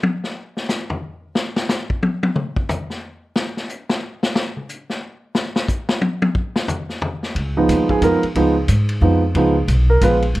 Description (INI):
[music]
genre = jazz piano trio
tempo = 180 BPM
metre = 3/4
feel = swing 62% on 8ths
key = Db mixolydian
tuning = A4 = 440 Hz
[part]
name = vintage drum kit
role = drums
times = 0.0-10.4 s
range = hi-hat, kick drum, ride cymbal, snare drum, toms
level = -21 LUFS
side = left 1 dB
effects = none
[part]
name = upright bass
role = bass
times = 7.4-10.4 s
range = Ab1 to Ab2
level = -17 LUFS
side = equal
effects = none
[part]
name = warm concert grand piano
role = melody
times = 7.6-10.2 s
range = F3 to Cb5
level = -16 LUFS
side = right 2 dB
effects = none
[sound]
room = light reverb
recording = dark, warm production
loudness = -17 LUFS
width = side -17 dB against mid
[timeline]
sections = 0.0-7.4 A section; 7.4-10.4 A section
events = drum solo 0.0-7.4; grand piano solo 7.4-10.4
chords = 0.0 N.C.; 7.4 Db7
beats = 0.03 | 0.37 0.70 1.03 | 1.36 1.70 2.03 | 2.36 2.69 3.03 | 3.36 3.69 4.03 | 4.36 4.69 5.02 | 5.36 5.69 6.02 | 6.35 6.68 7.02 | 7.35 7.68 8.02 | 8.35 8.68 9.02 | 9.35 9.68 10.02 | 10.35